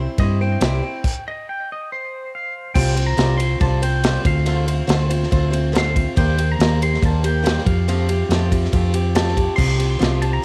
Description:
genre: folk rock and heartland rock.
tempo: 140 BPM.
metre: 4/4.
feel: straight.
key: unclear.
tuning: A4 = 442 Hz.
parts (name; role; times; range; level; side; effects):
picked steel-string acoustic guitar; accompaniment; 0.0-10.4 s; C3 to C5; -26 LUFS; equal; cassette tape.
hollow-body short-scale fingered electric bass; bass; 0.0-10.4 s; C2 to G2; -21 LUFS; equal; none.
pedal steel guitar; melody; 0.2-10.4 s; C5 to C6; -29 LUFS; equal; cassette tape, tape echo.
natural country drum kit; drums; 0.2-10.3 s; crash cymbal, kick drum, ride cymbal, snare drum; -24 LUFS; equal; cassette tape.
room: little or no reverb.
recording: home recording on cassette.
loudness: -19 LUFS.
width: mono.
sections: 0.0-2.7 A section; 2.7-10.4 B section.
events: pedal steel guitar solo 0.0-2.7; stop 1.0-2.7.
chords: 0.0 C; 2.7 Csus4; 4.2 Dm7; 6.2 Eb6; 7.7 Fadd9; 9.6 Csus4.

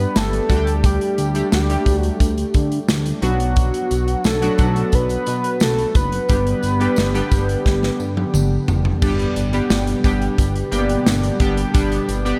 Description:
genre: 1980s-style pop.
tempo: 88 BPM.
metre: 4/4.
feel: straight.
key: unclear.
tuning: A4 = 441 Hz.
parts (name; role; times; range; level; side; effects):
fat analog lead; melody; 0.0-8.3 s; F#4 to B4; -26 LUFS; equal; chorus, tape echo.
chorused retro synth keys; accompaniment; 0.0-12.4 s; F#3 to G4; -25 LUFS; equal; none.
warm analog pad; sustained chords; 0.0-12.4 s; B2 to G4; -31 LUFS; equal; none.
chorused synth bass; bass; 0.0-12.3 s; F#1 to D3; -24 LUFS; equal; none.
modern studio drum kit; drums; 0.2-12.4 s; crash cymbal, hi-hat, kick drum, snare drum, toms; -22 LUFS; equal; none.
tambourine; percussion; 0.2-12.2 s; none; -41 LUFS; equal; none.
room: light reverb, small room ambience.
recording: dark, warm production.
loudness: -18 LUFS.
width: mono.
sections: 0.0-9.0 A section; 9.0-12.4 B section.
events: drum fill 7.7-9.0.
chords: 0.5 Dsus4; 3.2 Bm; 6.3 G.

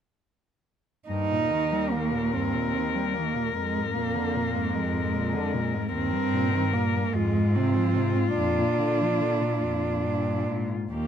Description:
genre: classical, lyrical piece for cello ensemble.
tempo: 46-51 BPM (dotted quarters).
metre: 6/8.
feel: rubato.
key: Eb major.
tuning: A4 = 440 Hz.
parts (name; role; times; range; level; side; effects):
warm cello; melody; 1.1-11.1 s; F4 to Bb4; -31 LUFS; left 8 dB; none.
warm cello; second line; 1.1-11.1 s; Ab3 to Eb4; -28 LUFS; right 6 dB; none.
warm cello; accompaniment; 1.1-11.1 s; Eb2 to G3; -30 LUFS; left 4 dB; none.
rich cello; bass; 1.1-11.1 s; Eb2 to Bb2; -30 LUFS; equal; none.
room: light reverb.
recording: close, detailed microphones.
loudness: -24 LUFS.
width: side -9 dB against mid.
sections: 1.1-11.1 A section.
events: none.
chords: 1.1 Eb; 3.6 Bb7/F; 5.9 Eb; 7.1 Fm; 8.4 Bb/F.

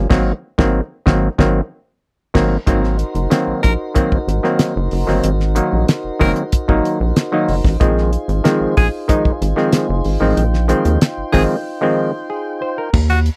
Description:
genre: funk.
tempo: 94 BPM.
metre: 4/4.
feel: straight.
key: unclear.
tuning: A4 = 439 Hz.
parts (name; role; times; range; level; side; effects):
mellow clav; stabs; 0.0-13.1 s; Eb3 to C5; -19 LUFS; equal; none.
rubbery square bass; bass; 0.0-13.3 s; Gb1 to Eb2; -20 LUFS; equal; none.
damped 70s drum kit; drums; 0.1-13.4 s; crash cymbal, hi-hat, kick drum, snare drum; -18 LUFS; equal; none.
mellow tonewheel organ; sustained chords; 2.7-12.9 s; Eb4 to G5; -27 LUFS; equal; slow rotary speaker.
raspy tenor saxophone; second line; 3.6-13.2 s; Gb4 to Bb4; -21 LUFS; equal; none.
room: little or no reverb.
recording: dry, close 1970s-style studio recording.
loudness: -17 LUFS.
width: mono.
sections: 0.0-2.7 A section; 2.7-12.9 B section.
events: band accent 0.1-2.7; break 11.7-12.9.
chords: 0.1 Ab9; 7.8 Bb9sus4.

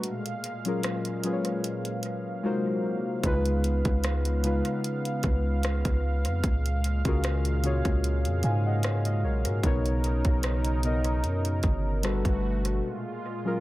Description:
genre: contemporary R&B.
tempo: 75 BPM.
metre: 4/4.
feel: swing 54% on 16ths.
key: F# major.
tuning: A4 = 440 Hz.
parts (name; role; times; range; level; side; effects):
muted felt-like synth keys; accompaniment; 0.0-13.6 s; B2 to G#5; -30 LUFS; left 2 dB; chorus.
warm analog pad; sustained chords; 0.0-13.6 s; A#2 to E#5; -34 LUFS; right 1 dB; chorus.
trap drum kit; drums; 0.0-12.8 s; hi-hat, kick drum, rim click; -30 LUFS; equal; dub echo.
long sustained 808-style bass; bass; 3.2-12.8 s; G1 to G#2; -27 LUFS; equal; none.
room: light reverb, digital ambience.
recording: echo-heavy mix.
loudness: -25 LUFS.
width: side -17 dB against mid.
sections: 0.0-13.6 A section.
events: break 0.0-3.2, 12.8-13.6; silent gap 2.4-3.2.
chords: 0.0 F#maj9; 2.4 G#13; 3.2 C#7; 6.4 F#maj9/C#; 9.6 Bmaj9; 12.0 Gmaj9; 12.8 F#maj9.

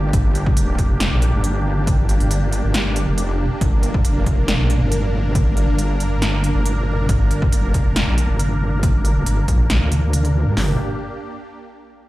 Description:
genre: heavy wobble dubstep.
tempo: 138 BPM.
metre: 4/4.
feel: half-time.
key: G minor.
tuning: A4 = 440 Hz.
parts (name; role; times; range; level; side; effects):
supersaw pad; sustained chords; 0.0-10.8 s; Bb3 to Bb4; -26 LUFS; equal; phaser, sidechain pumping.
wobble bass; bass; 0.0-10.8 s; F1 to G2; -18 LUFS; equal; chorus, overdrive.
big-room dance drum kit; drums; 0.1-10.7 s; hi-hat, kick drum, snare drum, toms; -19 LUFS; equal; overdrive.
big-room dance drum kit; drums; 0.1-10.3 s; hi-hat, snare drum; -24 LUFS; equal; overdrive.
room: little or no reverb.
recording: played on a big sound system in a bare room, large studio reverb, faint mains hum.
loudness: -16 LUFS.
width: side -17 dB against mid.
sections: 0.0-10.6 A section; 10.6-12.1 B section.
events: filter sweep on wobble bass 0.0-10.6.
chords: 0.0 Gm.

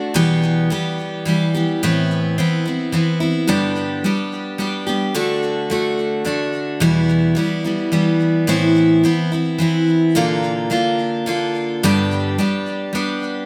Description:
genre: rock.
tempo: 108 BPM.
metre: 3/4.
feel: straight.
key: G major.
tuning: A4 = 437 Hz.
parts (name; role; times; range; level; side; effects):
picked steel-string acoustic guitar; solo; 0.0-13.5 s; E2 to G4; -18 LUFS; equal; digital delay.
room: moderate large studio reverb, RT60 0.9 s.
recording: none.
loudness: -18 LUFS.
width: mono.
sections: 0.0-10.2 A section; 10.2-13.5 B section.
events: none.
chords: 0.1 Em; 1.8 Amadd9; 3.5 G; 5.2 D; 6.8 Em; 8.5 Amadd9; 10.2 Bb; 11.8 G.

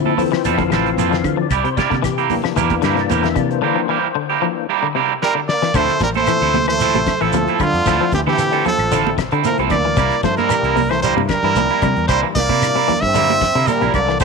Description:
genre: afrobeat.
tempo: 113 BPM.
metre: 4/4.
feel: straight.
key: unclear.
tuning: A4 = 440 Hz.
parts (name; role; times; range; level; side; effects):
percussive tonewheel organ; accompaniment; 0.0-14.2 s; E3 to F5; -23 LUFS; left 14 dB; slow rotary speaker, overdrive, chorus vibrato.
twangy electric guitar; arpeggios; 0.0-14.2 s; C3 to G3; -24 LUFS; left 14 dB; spring reverb.
fingered electric bass; bass; 0.0-14.2 s; A1 to D3; -23 LUFS; equal; none.
electric guitar at the edge of break-up; stabs; 0.1-14.2 s; F3 to A4; -21 LUFS; right 14 dB; none.
congas; percussion; 0.1-14.1 s; none; -26 LUFS; right 13 dB; none.
damped 70s drum kit; drums; 0.2-14.2 s; hi-hat, kick drum, snare drum; -25 LUFS; left 4 dB; none.
shekere; percussion; 0.2-14.2 s; none; -28 LUFS; right 7 dB; none.
claves; percussion; 0.3-14.2 s; none; -30 LUFS; left 16 dB; none.
brilliant trumpet; melody; 5.2-14.2 s; F4 to E5; -18 LUFS; equal; none.
trombone with plunger mute; second line; 5.2-14.2 s; D3 to C4; -24 LUFS; right 12 dB; tape echo.
clear trombone section; second line; 13.7-14.2 s; Bb2 to D3; -25 LUFS; left 12 dB; tape echo.
room: light reverb.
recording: 1960s-style stereo with parts hard left and right.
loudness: -14 LUFS.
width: side -4 dB against mid.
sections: 0.0-5.8 A section; 5.8-14.2 B section.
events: tonewheel organ solo 0.0-5.8; drum fill 5.2-5.8.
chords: 0.0 Dm9; 1.5 C7; 5.8 Dm9; 10.0 C7.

